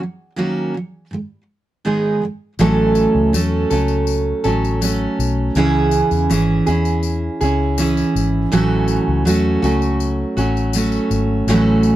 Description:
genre	acoustic pop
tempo	81 BPM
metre	4/4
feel	straight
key	unclear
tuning	A4 = 440 Hz
part	picked steel-string acoustic guitar	accompaniment	0.0-12.0 s	G#2 to A4	-16 LUFS	right 2 dB	none
part	vintage muted fingered electric bass	bass	2.6-11.9 s	G#1 to E2	-20 LUFS	left 2 dB	none
part	tambourine	percussion	2.6-12.0 s	none	-30 LUFS	left 22 dB	none
room	little or no reverb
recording	dry, close 1970s-style studio recording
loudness	-15 LUFS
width	side -14 dB against mid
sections	0.0-2.6 A section; 2.6-12.0 B section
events	break 0.0-2.6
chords	0.0 D#m7; 1.1 G#m; 2.6 A6; 5.6 C#m; 8.5 A6

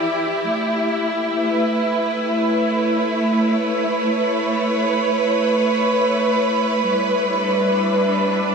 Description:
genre	ambient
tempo	free time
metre	none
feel	none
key	unclear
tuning	A4 = 443 Hz
part	clear studio string section	solo	0.0-8.5 s	E3 to D5	-17 LUFS	right 1 dB	none
room	wet shimmer reverb, RT60 7.6 s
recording	dark, warm production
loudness	-17 LUFS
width	side -5 dB against mid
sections	0.0-6.9 A section; 6.9-8.5 B section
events	none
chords	0.0 Em7; 0.5 Aadd9; 6.9 G6

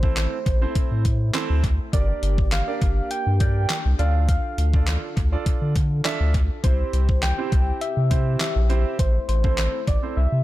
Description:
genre	dance-pop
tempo	102 BPM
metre	4/4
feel	straight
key	D minor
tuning	A4 = 440 Hz
part	soft struck synth lead	melody	0.0-10.4 s	C5 to G5	-30 LUFS	left 1 dB	chorus, dub echo
part	warm baby grand piano	accompaniment	0.0-10.2 s	C4 to E5	-31 LUFS	right 8 dB	sidechain pumping
part	dark French horn section	sustained chords	0.0-10.4 s	C3 to A4	-36 LUFS	left 3 dB	sidechain pumping
part	warm sub bass	bass	0.0-10.4 s	G1 to D3	-21 LUFS	equal	sidechain pumping
part	detuned 8-bit digital drum machine	drums	0.0-10.0 s	handclaps, hi-hat, kick drum, snare drum	-23 LUFS	equal	none
room	little or no reverb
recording	echo-heavy mix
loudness	-19 LUFS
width	side -16 dB against mid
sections	0.0-10.4 A section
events	grand piano fill 5.8-6.6; silent gap 10.2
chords	0.0 Am; 1.9 Gm; 4.0 Dm; 6.6 C; 9.0 Am

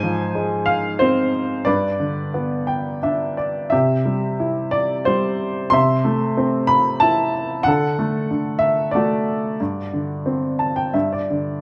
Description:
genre	classical, lyrical solo piano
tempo	84-96 BPM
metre	3/4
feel	rubato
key	unclear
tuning	A4 = 440 Hz
part	warm upright piano	solo	0.0-11.6 s	G2 to C6	-20 LUFS	equal	none
room	moderate recital hall reverb, RT60 1.6 s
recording	none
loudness	-20 LUFS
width	mono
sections	0.0-11.6 A section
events	upright piano fill 2.3-3.7, 10.3-11.6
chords	0.0 Fm/Ab; 1.7 G; 3.7 C; 5.7 Am/C; 7.7 D; 9.6 Gsus4; 10.9 G5

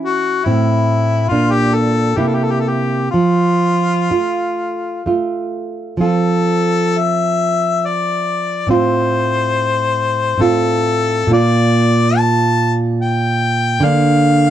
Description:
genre	romantic duo for harmonica and classical guitar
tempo	60-73 BPM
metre	3/4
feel	rubato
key	F major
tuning	A4 = 440 Hz
part	nylon-string guitar	accompaniment	0.0-14.5 s	A2 to F4	-15 LUFS	right 2 dB	none
part	warm harmonica	melody	0.1-14.5 s	E4 to A5	-17 LUFS	left 4 dB	none
room	little or no reverb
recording	dry, close 1970s-style studio recording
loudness	-13 LUFS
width	side -11 dB against mid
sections	0.0-6.0 A section; 6.0-14.5 B section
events	none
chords	0.5 Am; 1.3 Bb; 2.2 C7; 3.1 F; 8.7 F/A; 11.3 Bb; 13.9 Bb/D

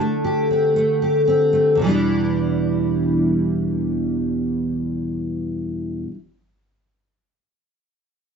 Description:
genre	pop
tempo	115 BPM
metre	4/4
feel	straight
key	E minor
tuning	A4 = 440 Hz
part	fingerpicked steel-string acoustic guitar	accompaniment	0.0-6.2 s	E2 to G4	-18 LUFS	equal	double-tracked left and right
room	wet small room ambience, RT60 0.5 s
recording	rough home demo mix, nothing above 7.8 kHz, faint mains hum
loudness	-18 LUFS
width	side -6 dB against mid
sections	0.0-1.8 A section; 1.8-5.9 B section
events	none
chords	0.0 D7sus4; 1.8 Em7

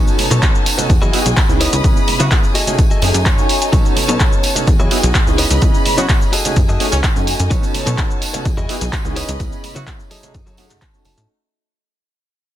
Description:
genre	filtered disco house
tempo	127 BPM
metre	4/4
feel	straight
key	F# dorian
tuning	A4 = 437 Hz
part	warm concert grand piano	accompaniment	0.0-11.3 s	A3 to G#5	-23 LUFS	right 2 dB	phaser, sidechain pumping
part	dark chamber violin section	sustained chords	0.0-11.3 s	A3 to D#6	-24 LUFS	left 2 dB	sidechain pumping
part	direct-recorded clean electric guitar	riff	0.0-11.3 s	D#4 to A5	-24 LUFS	left 2 dB	sidechain pumping
part	plucky analog bass	bass	0.0-11.3 s	F#1 to C#3	-18 LUFS	equal	sidechain pumping
part	punchy analog drum machine	drums	0.1-11.3 s	cabasa, handclaps, hi-hat	-20 LUFS	right 1 dB	sidechain pumping on hats, sidechain pumping on cymbals, sidechain pumping on perc
part	tambourine and congas	percussion	0.1-11.3 s	none	-27 LUFS	right 3 dB	sidechain pumping on perc
part	electronic kick drum	drums	0.4-10.9 s	none	-15 LUFS	equal	none
part	brilliant horn section	melody	2.2-2.4, 6.0-10.0 s	C#4 to F#4	-27 LUFS	right 1 dB	sidechain pumping, ping-pong delay
room	small room ambience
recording	dense, heavily limited modern master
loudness	-12 LUFS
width	side -12 dB against mid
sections	0.0-11.3 A section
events	drop 0.0-11.3; clean electric guitar fill 3.0-3.7, 9.9-11.3; fade-out 6.3-11.3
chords	0.0 B9; 0.9 Emaj9; 1.6 C#m9; 2.5 F#m69; 3.7 B9; 4.7 Emaj9; 5.4 C#m9; 6.3 F#m69; 7.5 B9; 8.5 Emaj9; 9.2 C#m9; 10.1 F#m69

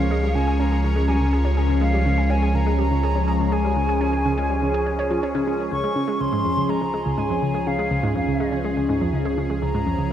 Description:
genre	ambient, sequencer-driven space music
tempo	123 BPM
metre	4/4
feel	straight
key	Db major from 5.7 s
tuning	A4 = 440 Hz
part	hollow concert flute	melody	0.0-10.1 s	F5 to Db6	-27 LUFS	left 1 dB	tape echo
part	phased analog pad	sustained chords	0.0-10.1 s	F3 to Db5	-24 LUFS	equal	phaser, chorus
part	analog pluck	riff	0.0-10.1 s	Db2 to Ab4	-26 LUFS	equal	chorus, tape echo
part	round analog bass	bass	0.0-10.1 s	Db2	-24 LUFS	equal	none
part	pulsing gated texture	texture	0.0-5.7 s	Bb4 to Bb5	-41 LUFS	left 1 dB	none
room	wet spring reverb, RT60 2.6 s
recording	echo-heavy mix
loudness	-19 LUFS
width	side -10 dB against mid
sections	0.0-5.7 A section; 5.7-10.1 B section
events	fade-in on analog synth bass 5.7-10.1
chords	0.0 Db

